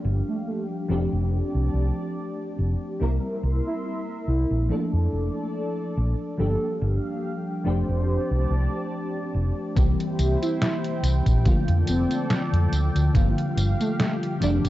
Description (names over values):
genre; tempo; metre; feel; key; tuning
vaporwave; 71 BPM; 4/4; swing 54% on 16ths; F major; A4 = 436 Hz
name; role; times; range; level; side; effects
mellow FM electric piano; accompaniment; 0.0-14.7 s; C3 to Bb4; -28 LUFS; left 1 dB; ensemble chorus, analog delay
lush unison pad; sustained chords; 0.1-14.7 s; E4 to C6; -36 LUFS; right 1 dB; chorus, phaser, vintage 12-bit sampler grit
fingered electric bass; bass; 0.0-14.7 s; F1 to F2; -22 LUFS; equal; tube saturation
warm velvety synth lead; melody; 0.3-14.1 s; A3 to C5; -31 LUFS; right 1 dB; chorus, tape echo
detuned 8-bit digital drum machine; drums; 9.8-14.7 s; hi-hat, snare drum, tambourine; -29 LUFS; equal; low-pass filter on hats, studio reverb, low-pass filter on toms, low-pass filter on perc, low-pass filter on cymbals, low-pass filter on snare
electronic kick drum; drums; 9.8-14.7 s; none; -21 LUFS; equal; studio reverb
room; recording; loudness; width
little or no reverb; dark, warm production, cassette tape, nothing above 7.7 kHz; -22 LUFS; side -15 dB against mid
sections
0.0-9.8 A section; 9.8-14.7 B section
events
none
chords
0.0 Gm7; 0.9 F69; 3.0 C7; 4.7 Bbmaj7; 6.4 Gm7; 7.7 F69; 9.8 C7; 11.5 Bbmaj7; 13.2 Gm7